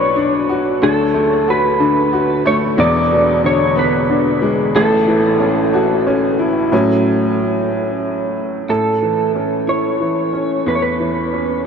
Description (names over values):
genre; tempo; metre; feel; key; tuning
pop; 61 BPM (dotted quarters); 6/8; straight; A major; A4 = 440 Hz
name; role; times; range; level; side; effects
electric slide guitar; melody; 0.0-11.6 s; A4 to D5; -17 LUFS; right 1 dB; lush chorus, ping-pong delay
clear upright piano; accompaniment; 0.0-11.7 s; E1 to B4; -16 LUFS; left 1 dB; none
room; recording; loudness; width
wet huge ambient reverb, RT60 8.4 s; dreamy mix soaked in reverb; -13 LUFS; side -6 dB against mid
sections
0.0-6.7 A section; 6.7-8.7 B section; 8.7-11.7 C section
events
upright piano solo 6.7-8.7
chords
0.0 Bmadd9; 0.8 D6; 2.8 E7; 4.8 A6; 8.7 A